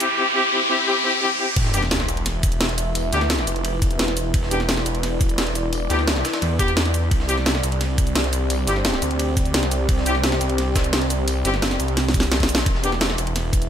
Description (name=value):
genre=dark technical drum and bass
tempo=173 BPM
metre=4/4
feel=straight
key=E minor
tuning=A4 = 440 Hz
part: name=dark analog pad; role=sustained chords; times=2.3-13.7 s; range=C4 to E5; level=-27 LUFS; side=right 1 dB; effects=chorus, sidechain pumping
part: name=bright brass ensemble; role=stabs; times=0.0-12.9 s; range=B3 to G4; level=-24 LUFS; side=left 2 dB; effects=dub echo
part: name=drum and bass drum kit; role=drums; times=0.0-13.7 s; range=crash cymbal, hi-hat, shaker, snare drum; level=-24 LUFS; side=equal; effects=small room ambience
part: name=riser and sub drop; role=sound effects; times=0.0-3.0 s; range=none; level=-23 LUFS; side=left 1 dB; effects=none
part: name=snarling distorted saw bass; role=bass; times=1.6-13.7 s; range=E1 to E2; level=-23 LUFS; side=equal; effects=distortion, sidechain pumping
part: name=breakbeat sampler-style drum kit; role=drums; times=1.6-13.6 s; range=hi-hat, ride cymbal, snare drum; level=-29 LUFS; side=equal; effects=high-pass filter on cymbals, small room ambience, high-pass filter on snare, high-pass filter on hats, high-pass filter on room
part: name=electronic kick drum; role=drums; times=1.6-13.6 s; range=none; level=-21 LUFS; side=equal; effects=small room ambience
room=light reverb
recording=none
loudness=-18 LUFS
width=side -9 dB against mid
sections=0.0-1.6 A section; 1.6-13.7 B section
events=build-up 0.0-1.6; riser 0.0-1.6; drop 1.6-13.7; impact 1.6-3.0; drum fill 12.0-12.7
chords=0.0 C; 1.6 E7(no3); 7.1 C5; 12.7 E5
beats=| 0.18 0.53 0.87 1.22 | 1.56 1.91 2.26 2.61 | 2.95 3.30 3.65 3.99 | 4.34 4.69 5.03 5.38 | 5.73 6.07 6.42 6.77 | 7.11 7.46 7.81 8.15 | 8.50 8.85 9.20 9.54 | 9.89 10.24 10.58 10.93 | 11.28 11.62 11.97 12.32 | 12.66 13.01 13.36